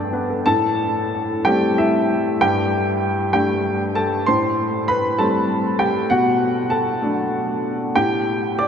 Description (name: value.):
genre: neoclassical minimalist piano.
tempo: 64 BPM (dotted quarters).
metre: 6/8.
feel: rubato.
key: A dorian.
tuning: A4 = 440 Hz.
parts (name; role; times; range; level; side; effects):
warm upright piano; solo; 0.0-8.7 s; G2 to D6; -17 LUFS; equal; none.
room: wet cathedral reverb, RT60 7.1 s.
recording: in a vast, echoing space.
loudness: -17 LUFS.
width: side -7 dB against mid.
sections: 0.5-8.7 A section.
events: none.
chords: 0.5 Am7; 2.4 Gsus2; 4.3 Am7; 6.1 Bm7; 8.0 A7(no3).